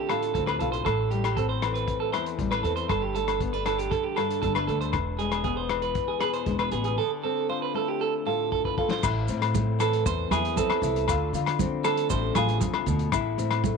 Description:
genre	highlife guitar band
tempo	117 BPM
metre	4/4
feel	straight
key	A harmonic minor from 9.0 s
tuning	A4 = 440 Hz
part	nylon-string guitar	accompaniment	0.0-13.8 s	E2 to A4	-31 LUFS	left 10 dB	none
part	clean electric guitar	arpeggios	0.0-12.6 s	G4 to C5	-28 LUFS	right 11 dB	slapback echo
part	vintage drum kit	drums	0.1-13.8 s	crash cymbal, hi-hat, kick drum, rim click, snare drum	-33 LUFS	left 4 dB	none
part	agogo bells	percussion	0.1-13.6 s	none	-32 LUFS	left 13 dB	none
part	upright bass	bass	0.3-13.8 s	E1 to D3	-29 LUFS	right 1 dB	none
part	congas	percussion	9.0-13.8 s	none	-32 LUFS	right 10 dB	none
part	maracas	percussion	9.0-13.8 s	none	-40 LUFS	right 18 dB	none
room	moderate spring reverb, RT60 2.7 s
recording	1960s-style stereo with parts hard left and right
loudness	-24 LUFS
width	side -5 dB against mid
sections	0.0-9.0 A section; 9.0-13.8 B section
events	drum fill 8.5-9.0; clean electric guitar solo 9.0-13.8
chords	0.0 Dm7; 0.9 Am; 2.9 Gsus2; 4.9 E; 7.0 Dm7; 9.0 Am; 11.1 Dm7; 13.1 Am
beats	0.35 | 0.86 1.37 1.88 2.39 | 2.90 3.41 3.92 4.43 | 4.94 5.45 5.96 6.47 | 6.99 7.50 8.01 8.52 | 9.04 9.55 10.06 10.57 | 11.08 11.59 12.11 12.62 | 13.13 13.64

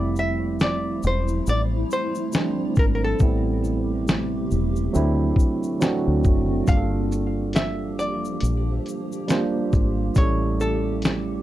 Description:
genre	lo-fi hip hop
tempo	69 BPM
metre	4/4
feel	swing 58% on 16ths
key	unclear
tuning	A4 = 439 Hz
part	archtop guitar, miked and amplified	melody	0.0-11.4 s	A4 to F5	-28 LUFS	left 1 dB	none
part	tine electric piano	accompaniment	0.0-11.4 s	F3 to C5	-25 LUFS	right 3 dB	none
part	granular cloud pad	sustained chords	0.0-11.4 s	C3 to G4	-32 LUFS	left 1 dB	built-in reverb
part	deep dub fingered electric bass	bass	0.0-11.4 s	E1 to D2	-25 LUFS	equal	none
part	tube shaker	percussion	0.2-11.3 s	none	-43 LUFS	left 7 dB	none
part	lo-fi sampler-style drum kit	drums	0.6-11.3 s	hi-hat, kick drum, shaker, snare drum	-21 LUFS	equal	vintage 12-bit sampler grit
room	moderate small room ambience, RT60 0.5 s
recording	dark, warm production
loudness	-20 LUFS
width	side -14 dB against mid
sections	0.0-11.4 A section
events	break 0.0-6.7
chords	0.0 Fmaj7; 3.2 Am7; 4.9 D7; 6.7 Gm7; 10.2 A7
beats	0.60 1.47 2.33 | 3.20 4.07 4.94 5.81 | 6.68 7.55 8.42 9.29 | 10.16 11.03

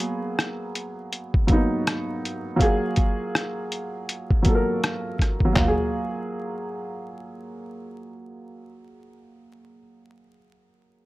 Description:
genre	lo-fi hip hop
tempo	81 BPM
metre	4/4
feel	swing 60% on 16ths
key	F# major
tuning	A4 = 440 Hz
part	warm upright piano	accompaniment	0.0-11.0 s	F#3 to A#4	-26 LUFS	right 1 dB	cassette tape, low-pass filter
part	lo-fi sampler-style drum kit	drums	0.0-5.8 s	handclaps, hi-hat, kick drum, rim click, toms	-21 LUFS	equal	none
room	little or no reverb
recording	dry, gritty hardware recording, vinyl crackle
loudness	-22 LUFS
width	side -18 dB against mid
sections	0.0-5.6 A section; 5.6-8.5 B section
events	none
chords	0.0 G#m9; 2.6 F#maj9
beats	0.38 1.12 1.86 | 2.60 3.34 4.08 4.82 | 5.56 6.30 7.04 7.78

